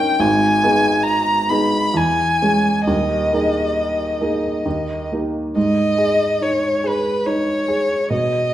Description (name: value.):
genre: classical, romantic duo for violin and grand piano.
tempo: 68 BPM.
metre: 3/4.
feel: uneven beats, rubato.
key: G# minor.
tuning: A4 = 438 Hz.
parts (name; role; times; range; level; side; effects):
rich violin; melody; 0.0-8.5 s; B4 to B5; -18 LUFS; left 1 dB; none.
warm baby grand piano; accompaniment; 0.0-8.5 s; D#1 to A#4; -19 LUFS; right 2 dB; none.
room: wet recital hall reverb, RT60 1.3 s.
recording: none.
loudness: -16 LUFS.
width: side -12 dB against mid.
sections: 0.0-5.6 A section; 5.6-8.5 B section.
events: none.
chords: 0.2 G#m; 1.9 C#m/E; 2.9 D#sus4; 4.7 D#; 5.6 G#5.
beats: | 0.20 1.05 1.94 | 2.86 3.76 4.65 | 5.56 6.41 7.26 | 8.11.